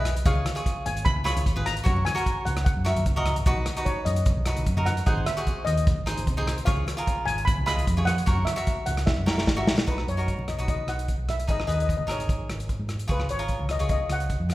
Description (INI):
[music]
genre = calypso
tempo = 150 BPM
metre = 4/4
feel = straight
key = B major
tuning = A4 = 440 Hz
[part]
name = cavaquinho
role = accompaniment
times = 0.0-14.3 s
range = D#4 to E5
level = -31 LUFS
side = right 1 dB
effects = none
[part]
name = hollow-body short-scale fingered electric bass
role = bass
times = 0.0-14.5 s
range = F#1 to G#2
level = -28 LUFS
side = equal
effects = none
[part]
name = congas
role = percussion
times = 0.0-14.5 s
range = none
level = -37 LUFS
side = left 1 dB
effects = none
[part]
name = warm soul drum kit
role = drums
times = 0.1-14.5 s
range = hi-hat, kick drum, rim click, snare drum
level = -27 LUFS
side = equal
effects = none
[part]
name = steel pan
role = melody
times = 0.3-14.5 s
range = B4 to B5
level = -30 LUFS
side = left 1 dB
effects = none
[sound]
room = wet recital hall reverb, RT60 1.4 s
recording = recorded in a church or concert hall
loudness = -23 LUFS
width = side -16 dB against mid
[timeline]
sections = 0.0-9.9 A section; 9.9-14.5 B section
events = drum fill 3.2-3.5, 9.1-9.9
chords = 0.2 C#7; 1.9 F#; 3.5 B; 5.1 G#7; 6.7 C#7; 8.3 F#7; 9.9 B; 11.5 G#m; 13.1 C#